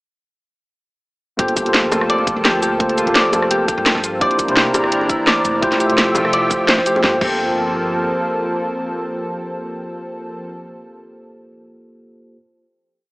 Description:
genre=liquid drum and bass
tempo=170 BPM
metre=4/4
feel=straight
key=G dorian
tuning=A4 = 440 Hz
part: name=mellow tine electric piano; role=accompaniment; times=1.4-12.4 s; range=A3 to E5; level=-21 LUFS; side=equal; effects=dub echo
part: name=lush unison pad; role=sustained chords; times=1.4-10.5 s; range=E3 to E5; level=-22 LUFS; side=equal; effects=chorus, sidechain pumping
part: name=Celtic harp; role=arpeggios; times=1.4-9.6 s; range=E4 to D5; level=-21 LUFS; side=equal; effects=dub echo
part: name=upright bass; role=bass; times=1.4-8.1 s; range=F1 to G2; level=-29 LUFS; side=equal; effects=none
part: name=electronic kick drum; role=drums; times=1.4-7.3 s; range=none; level=-24 LUFS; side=equal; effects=none
part: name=garage drum kit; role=drums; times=1.4-7.3 s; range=crash cymbal, hi-hat, rim click, shaker, snare drum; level=-18 LUFS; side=equal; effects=none
part: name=bongos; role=percussion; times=1.9-7.0 s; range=none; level=-25 LUFS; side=left 1 dB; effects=none
room=moderate lush hall reverb, RT60 2.2 s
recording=small speaker sound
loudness=-15 LUFS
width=side -22 dB against mid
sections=1.4-7.0 drop; 7.0-9.9 final chord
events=drop 1.4-7.0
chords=1.4 Gm11; 4.2 C9; 5.6 Fmaj9; 7.0 Gm11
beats=| 1.39 1.74 2.10 2.45 | 2.80 3.15 3.51 3.86 | 4.21 4.57 4.92 5.27 | 5.62 5.98 6.33 6.68 | 7.04 7.39 7.74 8.10 | 8.45 8.80 9.15 9.51

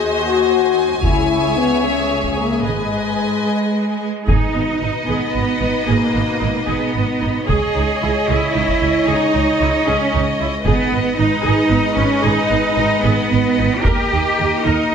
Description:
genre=cinematic, epic orchestral film score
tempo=75 BPM (dotted quarters)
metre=6/8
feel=straight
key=G# minor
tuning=A4 = 442 Hz
part: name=warm symphonic violin section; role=second line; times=0.0-14.9 s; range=A#4 to G#5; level=-25 LUFS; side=left 3 dB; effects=none
part: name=warm symphonic viola section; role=accompaniment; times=0.0-14.9 s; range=B3 to C#5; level=-25 LUFS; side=right 1 dB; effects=none
part: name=warm French horn section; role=sustained chords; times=0.0-14.9 s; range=B2 to D#5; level=-21 LUFS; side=left 5 dB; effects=none
part: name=rich symphonic cello section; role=bass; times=0.0-14.9 s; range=C#2 to G#4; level=-20 LUFS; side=right 3 dB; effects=none
part: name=rich studio double bass section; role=bass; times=1.0-14.9 s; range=G#1 to D#2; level=-21 LUFS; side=right 4 dB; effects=none
part: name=taiko ensemble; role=drums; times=1.0-14.9 s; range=none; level=-21 LUFS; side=equal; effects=none
part: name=rich symphonic violin section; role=melody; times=4.3-14.9 s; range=D#5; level=-25 LUFS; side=left 3 dB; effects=none
room=moderate scoring stage reverb, RT60 1.5 s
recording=none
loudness=-15 LUFS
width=side -7 dB against mid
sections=0.0-4.3 A section; 4.3-14.9 B section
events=none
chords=0.0 G#7/D#; 1.0 C#m; 2.6 G#m; 7.5 C#madd9; 10.7 G#m; 13.9 D#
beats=0.23 | 1.03 1.83 | 2.64 3.46 | 4.28 5.09 | 5.88 6.68 | 7.50 8.29 | 9.09 9.88 | 10.66 11.46 | 12.25 13.04 | 13.85 14.66

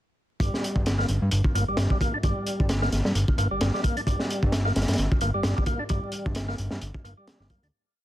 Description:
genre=breakbeat, breaks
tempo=131 BPM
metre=4/4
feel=swing 56% on 16ths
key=G minor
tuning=A4 = 441 Hz
part: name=overdriven tonewheel organ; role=riff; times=0.4-7.7 s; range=G3 to D4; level=-31 LUFS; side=equal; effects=chorus vibrato, stopped rotary speaker, low-pass filter, dub echo
part: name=fat analog bass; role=bass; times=0.4-7.7 s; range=G1 to G2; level=-26 LUFS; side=equal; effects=none
part: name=crunchy breakbeat drum kit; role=drums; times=0.4-7.7 s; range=hi-hat, kick drum, snare drum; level=-26 LUFS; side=equal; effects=none
room=small room reverb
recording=dense, heavily limited modern master, vinyl crackle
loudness=-23 LUFS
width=side -13 dB against mid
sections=0.4-7.7 groove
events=fade-out 5.3-7.7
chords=0.4 Gm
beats=| 0.41 0.86 1.32 1.78 | 2.24 2.70 3.15 3.61 | 4.07 4.53 4.99 5.45 | 5.90 6.36 6.82 7.28

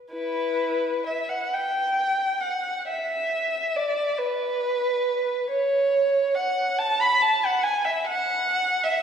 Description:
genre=classical, free, expressive piece for unaccompanied violin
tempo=36-51 BPM (dotted quarters)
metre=6/8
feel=rubato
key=E minor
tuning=A4 = 438 Hz
part: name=dark violin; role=solo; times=0.1-9.0 s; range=E4 to B5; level=-22 LUFS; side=equal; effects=none
room=wet church reverb, RT60 3.0 s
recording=heard from further back in the room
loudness=-22 LUFS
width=side -7 dB against mid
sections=0.1-9.0 A section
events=none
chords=none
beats=| 0.14 1.52 | 2.84 4.18 | 5.51 6.77 | 8.04

